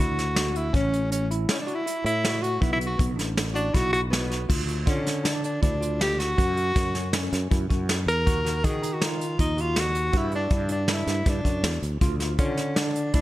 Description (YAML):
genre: progressive instrumental, band music in an uneven meter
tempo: 160 BPM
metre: 5/4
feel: straight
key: unclear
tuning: A4 = 440 Hz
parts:
  - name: breathy tenor saxophone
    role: melody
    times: 0.0-13.2 s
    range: B3 to A#4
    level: -27 LUFS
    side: equal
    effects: none
  - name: tine electric piano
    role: arpeggios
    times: 0.0-13.2 s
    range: B3 to F#4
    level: -33 LUFS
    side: right 1 dB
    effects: medium stereo tremolo, tape echo
  - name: sustaining fretless electric bass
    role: bass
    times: 0.0-13.2 s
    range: A1 to D#3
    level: -28 LUFS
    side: equal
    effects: none
  - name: vintage brush drum kit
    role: drums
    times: 0.2-13.2 s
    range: crash cymbal, hi-hat, kick drum, snare drum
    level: -26 LUFS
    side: equal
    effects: none
room: light reverb, small room ambience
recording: none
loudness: -22 LUFS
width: side -16 dB against mid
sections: 0.0-4.5 A section; 4.5-13.2 B section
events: tenor saxophone solo 0.0-4.5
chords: 0.0 Dadd9; 0.7 A; 2.6 Bm7; 4.5 Dm; 6.4 F#5; 8.3 D#m; 10.1 G5; 12.0 Dm